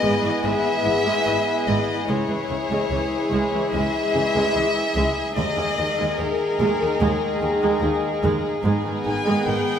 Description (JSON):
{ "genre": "cinematic", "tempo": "73 BPM", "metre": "4/4", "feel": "straight", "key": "unclear", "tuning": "A4 = 435 Hz", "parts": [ { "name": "warm chamber violin section", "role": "melody", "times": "0.0-9.8 s", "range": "A#4 to G#5", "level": "-25 LUFS", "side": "left 3 dB", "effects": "none" }, { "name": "dark studio violin section", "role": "second line", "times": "0.0-9.8 s", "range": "D#4 to G#4", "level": "-27 LUFS", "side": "left 1 dB", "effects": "none" }, { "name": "dark chamber viola section", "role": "accompaniment", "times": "0.0-9.8 s", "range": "C#3 to B3", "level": "-26 LUFS", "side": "right 2 dB", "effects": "none" }, { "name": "drifting glass-harmonics texture", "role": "sustained chords", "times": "0.0-9.8 s", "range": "E4 to E5", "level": "-30 LUFS", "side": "left 1 dB", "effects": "chorus, built-in reverb" }, { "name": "warm French horn section", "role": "sustained chords", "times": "0.0-9.8 s", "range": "G#3 to G#4", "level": "-30 LUFS", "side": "left 6 dB", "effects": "none" }, { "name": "warm trombone section", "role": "sustained chords", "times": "0.0-9.8 s", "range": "D#3 to G#3", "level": "-32 LUFS", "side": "right 2 dB", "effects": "none" }, { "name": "dark chamber double bass section", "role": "bass", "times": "0.0-9.5 s", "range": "G#1 to D#2", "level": "-31 LUFS", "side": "right 2 dB", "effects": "none" }, { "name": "warm chamber cello section", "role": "bass", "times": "0.0-9.6 s", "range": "C#2 to G#2", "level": "-29 LUFS", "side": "right 2 dB", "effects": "none" }, { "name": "timpani", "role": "percussion", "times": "5.4-6.6 s", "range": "D#3", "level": "-38 LUFS", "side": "right 1 dB", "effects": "none" } ], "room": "moderate scoring stage reverb, RT60 1.5 s", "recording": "none", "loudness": "-19 LUFS", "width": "side -8 dB against mid", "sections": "0.0-9.8 A section", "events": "none", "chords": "0.0 E/G#; 2.1 C#m; 5.4 D#sus4; 8.7 G#m", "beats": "0.44 1.26 | 2.08 2.90 3.72 4.55 | 5.37 6.19 7.01 7.83 | 8.66 9.48" }